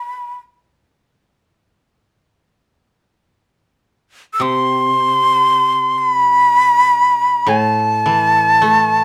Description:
japanese traditional, Japanese chamber music; free time; A4 = 437 Hz
breathy bright shakuhachi; melody; 0.0-9.0 s; A5 to E6; -14 LUFS; equal
koto; accompaniment; 4.4-9.0 s; A2 to A3; -24 LUFS; equal
light reverb; -14 LUFS; mono
0.0-9.0 A section
free time

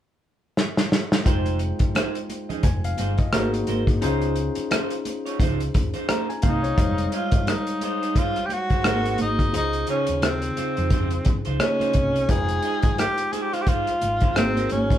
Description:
lush 1970s-style soul; 87 BPM; 4/4; swing 58% on 16ths; F minor; A4 = 440 Hz
warm soul drum kit; drums; 0.6-15.0 s; hi-hat, kick drum, rim click, snare drum; -23 LUFS; equal
barky tine electric piano; accompaniment; 1.2-15.0 s; Db3 to Bb5; -29 LUFS; left 2 dB; overdrive
electric guitar through a small old amp; riff; 1.3-14.9 s; Eb4 to Eb5; -32 LUFS; right 6 dB
hollow-body short-scale fingered electric bass; bass; 1.3-15.0 s; F1 to F2; -27 LUFS; equal
congas; percussion; 1.9-14.9 s; -32 LUFS; right 4 dB
breathy tenor saxophone; melody; 6.5-15.0 s; C4 to Ab4; -25 LUFS; equal
moderate large studio reverb, RT60 0.8 s; band playing live in one room; -20 LUFS; side -11 dB against mid
0.0-1.3 A section; 1.3-6.8 B section; 6.8-15.0 C section
drum fill 0.6-1.3
0.0 N.C.; 1.3 Fm7; 3.3 Ab9; 4.0 Dbmaj9; 6.8 Fm7; 8.8 Ab9; 9.5 Dbmaj9; 12.3 Fm7; 14.4 Ab9
0.57 | 1.26 1.95 2.64 3.33 | 4.02 4.71 5.40 6.09 | 6.78 7.47 8.16 8.85 | 9.54 10.23 10.92 11.61 | 12.30 12.99 13.68 14.36

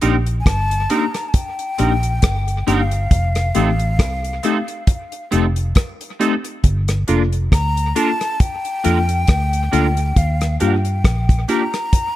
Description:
lovers rock reggae; 68 BPM; 4/4; swing 56% on 16ths; C dorian; A4 = 435 Hz
tine electric piano; accompaniment; 0.0-11.6 s; A3 to A4; -21 LUFS; left 2 dB; overdrive, fast stereo tremolo
twangy electric guitar; stabs; 0.0-11.6 s; C4 to Bb4; -24 LUFS; right 7 dB; ensemble chorus
vintage muted fingered electric bass; bass; 0.0-11.4 s; F1 to G2; -18 LUFS; equal
damped 70s drum kit; drums; 0.0-12.2 s; hi-hat, kick drum, rim click; -17 LUFS; equal
breathy hollow jazz flute; melody; 0.4-12.2 s; F5 to Bb5; -24 LUFS; left 2 dB; dub echo
small room ambience; -15 LUFS; side -14 dB against mid
0.0-12.2 A section
0.0 Cm7; 3.1 F7; 6.6 Gm7; 10.2 Ebmaj7
0.46 1.34 2.23 | 3.11 3.99 4.87 5.75 | 6.64 7.52 8.40 9.28 | 10.16 11.05 11.93

